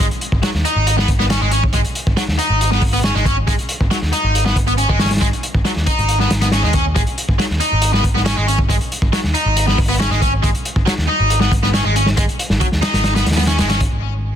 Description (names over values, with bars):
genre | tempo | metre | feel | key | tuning
breakbeat, breaks | 138 BPM | 4/4 | straight | G# minor | A4 = 438 Hz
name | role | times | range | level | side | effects
distorted electric guitar | riff | 0.0-13.8 s | F#3 to D#4 | -19 LUFS | equal | overdrive, ping-pong delay
picked electric bass | bass | 0.0-14.4 s | G#1 to D#2 | -18 LUFS | equal | low-pass filter
crunchy breakbeat drum kit | drums | 0.0-13.9 s | hi-hat, kick drum, snare drum | -18 LUFS | equal | none
room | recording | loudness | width
small room ambience | dense, heavily limited modern master | -14 LUFS | side -9 dB against mid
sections
0.0-13.9 A section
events
none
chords
0.0 G#5